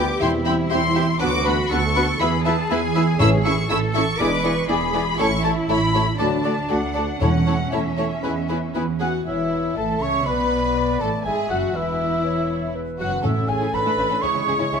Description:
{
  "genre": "quick classical-period movement for symphony orchestra",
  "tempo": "120 BPM",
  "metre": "4/4",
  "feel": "straight",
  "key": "A major",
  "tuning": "A4 = 440 Hz",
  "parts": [
    { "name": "dark studio violin section", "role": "melody", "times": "0.0-14.8 s", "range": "E5 to E6", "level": "-27 LUFS", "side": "left 2 dB", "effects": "none" },
    { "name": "mellow clarinet", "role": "second line", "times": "0.0-14.8 s", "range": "D4 to E5", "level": "-31 LUFS", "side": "left 2 dB", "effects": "none" },
    { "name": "mellow hollow large flute ensemble", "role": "second line", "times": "0.0-14.8 s", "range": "E5 to C#6", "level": "-30 LUFS", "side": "left 1 dB", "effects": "none" },
    { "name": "rich studio violin section", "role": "second line", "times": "0.0-14.8 s", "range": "G#3 to E5", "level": "-29 LUFS", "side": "left 3 dB", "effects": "none" },
    { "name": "warm oboe", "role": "second line", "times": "0.0-14.8 s", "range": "B4 to C#6", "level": "-28 LUFS", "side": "right 2 dB", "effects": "none" },
    { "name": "rich studio viola section", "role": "accompaniment", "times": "0.0-14.8 s", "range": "A3 to C#5", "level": "-28 LUFS", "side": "equal", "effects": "none" },
    { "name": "dark French horn section", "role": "sustained chords", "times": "0.0-14.8 s", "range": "E3 to E4", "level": "-28 LUFS", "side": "left 5 dB", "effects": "none" },
    { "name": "clear studio double bass section", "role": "bass", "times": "0.0-14.8 s", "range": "E1 to E2", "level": "-25 LUFS", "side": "right 4 dB", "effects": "none" },
    { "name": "warm studio cello section", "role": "bass", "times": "0.0-14.8 s", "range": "E2 to B4", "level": "-28 LUFS", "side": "right 2 dB", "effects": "none" },
    { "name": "timpani", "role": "percussion", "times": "0.2-3.9, 7.2-7.9, 13.2-13.9 s", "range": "E2 to A2", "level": "-25 LUFS", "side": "equal", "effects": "none" }
  ],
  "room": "moderate concert hall reverb, RT60 2.0 s",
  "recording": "none",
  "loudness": "-18 LUFS",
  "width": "side -6 dB against mid",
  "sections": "0.0-9.3 A section; 9.3-14.8 B section",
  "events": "none",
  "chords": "0.2 C/E; 1.2 Bm/D; 2.2 E; 3.2 A; 4.2 E7; 5.2 A; 6.2 D; 7.2 A/E; 8.2 E; 9.3 A/E; 10.3 D5; 11.3 E; 13.2 A; 14.2 C#m",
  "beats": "0.22 0.72 | 1.21 1.71 2.21 2.71 | 3.21 3.70 4.20 4.70 | 5.19 5.69 6.20 6.70 | 7.21 7.73 8.24 8.75 | 9.27 9.77 10.27 10.76 | 11.26 11.76 12.25 12.75 | 13.25 13.74 14.24 14.73"
}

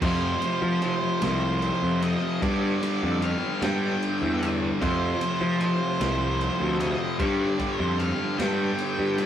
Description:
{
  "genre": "quiet-loud alternative rock",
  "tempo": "50 BPM (dotted quarters)",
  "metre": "6/8",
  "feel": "straight",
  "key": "unclear",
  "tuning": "A4 = 441 Hz",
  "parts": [
    { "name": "octave-fuzz lead guitar", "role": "melody", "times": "0.0-9.2 s", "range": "C5 to G5", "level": "-31 LUFS", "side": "right 2 dB", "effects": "distortion" },
    { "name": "distorted electric guitar", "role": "riff", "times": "0.0-9.3 s", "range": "F2 to G3", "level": "-33 LUFS", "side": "right 5 dB", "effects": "distortion" },
    { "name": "high-gain distorted guitar", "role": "riff", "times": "0.0-9.3 s", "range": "F2 to G3", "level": "-33 LUFS", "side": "equal", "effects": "distortion" },
    { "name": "thick fuzz guitar", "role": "riff", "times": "0.0-9.3 s", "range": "F2 to G3", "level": "-30 LUFS", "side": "left 4 dB", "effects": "distortion" },
    { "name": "fuzz picked electric bass", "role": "bass", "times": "0.0-9.3 s", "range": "C2 to F3", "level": "-27 LUFS", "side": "equal", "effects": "overdrive" },
    { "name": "raw garage drum kit", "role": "drums", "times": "0.0-9.3 s", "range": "crash cymbal, kick drum, ride cymbal, snare drum", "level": "-34 LUFS", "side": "equal", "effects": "none" }
  ],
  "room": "wet studio reverb, RT60 0.5 s",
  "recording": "rough rehearsal-room recording",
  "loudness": "-23 LUFS",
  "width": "side -10 dB against mid",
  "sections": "0.0-9.3 A section",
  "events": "none",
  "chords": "0.0 F5; 2.4 G5; 4.8 F5; 7.2 G5",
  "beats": "| 0.03 1.23 | 2.42 3.62 | 4.81 6.00 | 7.20 8.39"
}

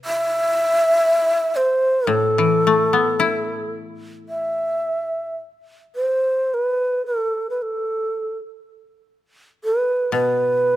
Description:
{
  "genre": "japanese traditional, Japanese chamber music",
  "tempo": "53-59 BPM",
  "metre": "2/4",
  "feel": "rubato",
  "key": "A hirajoshi",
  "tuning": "A4 = 440 Hz",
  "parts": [
    { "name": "koto", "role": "accompaniment", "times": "0.0-5.4, 10.1-10.8 s", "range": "A2 to E4", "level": "-21 LUFS", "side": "left 6 dB", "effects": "none" },
    { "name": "mellow long shakuhachi", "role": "melody", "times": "0.1-10.8 s", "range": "A4 to E5", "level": "-18 LUFS", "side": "equal", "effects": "none" }
  ],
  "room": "light reverb",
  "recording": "close, detailed microphones",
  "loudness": "-18 LUFS",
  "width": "side -13 dB against mid",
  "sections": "0.0-4.3 A section; 4.3-10.8 B section",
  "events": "none",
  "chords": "none",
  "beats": "| 0.05 1.07 | 2.11 3.19 | 4.30 5.41 | 6.50 7.56 | 8.60 9.62 | 10.66"
}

